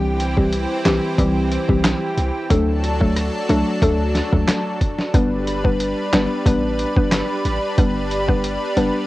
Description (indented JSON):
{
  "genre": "dancehall",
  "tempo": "91 BPM",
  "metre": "4/4",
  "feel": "straight",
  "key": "G major",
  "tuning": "A4 = 440 Hz",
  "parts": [
    { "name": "lush unison pad", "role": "sustained chords", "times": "0.0-9.1 s", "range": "E3 to B4", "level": "-24 LUFS", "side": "equal", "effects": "chorus, sidechain pumping" },
    { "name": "hard-hitting 808-style bass", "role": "bass", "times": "0.0-8.9 s", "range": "F#1 to D2", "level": "-23 LUFS", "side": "equal", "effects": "none" },
    { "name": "lo-fi sampler-style drum kit", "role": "drums", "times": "0.2-8.9 s", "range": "handclaps, hi-hat, kick drum, rim click, snare drum", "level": "-19 LUFS", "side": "equal", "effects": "overdrive" },
    { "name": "hollow square pluck", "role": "accompaniment", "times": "0.4-8.9 s", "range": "E3 to B4", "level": "-21 LUFS", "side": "left 1 dB", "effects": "chorus, sidechain pumping" }
  ],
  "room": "little or no reverb",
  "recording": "home recording on cassette",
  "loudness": "-17 LUFS",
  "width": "side -17 dB against mid",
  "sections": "0.0-9.1 A section",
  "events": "none",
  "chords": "0.0 C; 2.5 D; 5.1 G",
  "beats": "0.53 1.19 1.84 | 2.50 3.16 3.82 4.48 | 5.14 5.80 6.46 7.12 | 7.78 8.44"
}